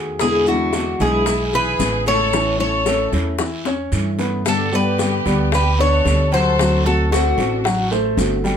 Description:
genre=latin, Cuban son and guajira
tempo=113 BPM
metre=4/4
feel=straight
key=unclear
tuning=A4 = 441 Hz
part: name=nylon-string guitar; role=accompaniment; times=0.0-8.6 s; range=B2 to G4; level=-24 LUFS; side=left 3 dB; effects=none
part: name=warm grand piano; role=arpeggios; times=0.0-8.6 s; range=E3 to G5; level=-23 LUFS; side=equal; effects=none
part: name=upright bass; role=bass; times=0.0-8.6 s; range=G1 to G2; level=-21 LUFS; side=right 1 dB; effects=none
part: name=Cuban tres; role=melody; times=0.2-7.9 s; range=F#4 to C#5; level=-20 LUFS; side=left 1 dB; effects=none
part: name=bright studio violin section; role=second line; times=0.2-7.9 s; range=D4 to A4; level=-26 LUFS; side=equal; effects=none
part: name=bongos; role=percussion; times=0.2-8.6 s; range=none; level=-26 LUFS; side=left 6 dB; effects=none
part: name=guiro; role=percussion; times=0.2-8.6 s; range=none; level=-32 LUFS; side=right 4 dB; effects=none
part: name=maracas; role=percussion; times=0.2-8.6 s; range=none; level=-33 LUFS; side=left 4 dB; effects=none
room=light reverb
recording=close, detailed microphones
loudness=-16 LUFS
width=side -8 dB against mid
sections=0.0-4.5 A section; 4.5-8.6 B section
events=drum fill 3.4-4.5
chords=0.2 E7; 2.3 A; 4.5 Gadd9; 6.6 D7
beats=| 0.20 0.73 1.26 1.80 | 2.33 2.86 3.40 3.93 | 4.46 4.99 5.52 6.05 | 6.59 7.12 7.65 8.18

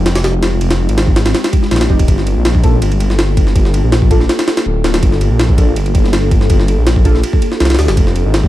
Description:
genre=drum and bass, jungle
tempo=163 BPM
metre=4/4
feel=straight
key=G minor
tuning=A4 = 440 Hz
part: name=detuned saw bass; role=bass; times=0.0-8.5 s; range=D1 to D2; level=-13 LUFS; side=equal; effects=none
part: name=jungle sampler-style drum kit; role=drums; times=0.1-8.5 s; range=kick drum, ride cymbal, snare drum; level=-13 LUFS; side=equal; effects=overdrive, studio reverb
part: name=deep mellow chord stab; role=stabs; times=1.9-7.2 s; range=Ab3 to A4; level=-24 LUFS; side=right 1 dB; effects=none
room=digital ambience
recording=vinyl crackle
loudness=-10 LUFS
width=side -14 dB against mid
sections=0.0-8.5 A section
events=none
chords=0.0 Fm9; 2.1 Gm9; 8.0 Fm9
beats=0.24 | 0.61 0.98 1.35 1.72 | 2.08 2.45 2.82 3.19 | 3.56 3.92 4.29 4.66 | 5.03 5.40 5.76 6.13 | 6.50 6.87 7.24 7.60 | 7.97 8.34

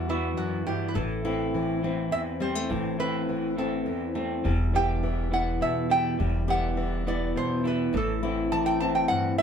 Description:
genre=acoustic folk duo or small band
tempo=103 BPM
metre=3/4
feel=straight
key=E minor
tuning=A4 = 441 Hz
part: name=metal-body resonator slide guitar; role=second line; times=0.0-9.4 s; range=E4 to A5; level=-29 LUFS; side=right 2 dB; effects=none
part: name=nylon-string guitar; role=accompaniment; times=0.0-9.4 s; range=E2 to G4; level=-29 LUFS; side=left 3 dB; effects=none
part: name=electric guitar through a small old amp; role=arpeggios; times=0.0-9.4 s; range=E3 to F#4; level=-31 LUFS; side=right 2 dB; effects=harmonic tremolo
part: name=upright bass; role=bass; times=0.0-9.1 s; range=E1 to E2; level=-30 LUFS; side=equal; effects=none
room=moderate studio reverb, RT60 0.5 s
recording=band playing live in one room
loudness=-24 LUFS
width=side -7 dB against mid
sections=0.0-9.4 A section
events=resonator guitar played with a steel bar solo 0.0-9.4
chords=0.0 Emadd9; 1.0 Am; 4.5 Emadd9; 7.9 Am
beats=0.38 | 0.96 1.54 2.13 | 2.71 3.29 3.87 | 4.45 5.03 5.62 | 6.20 6.78 7.36 | 7.94 8.52 9.10

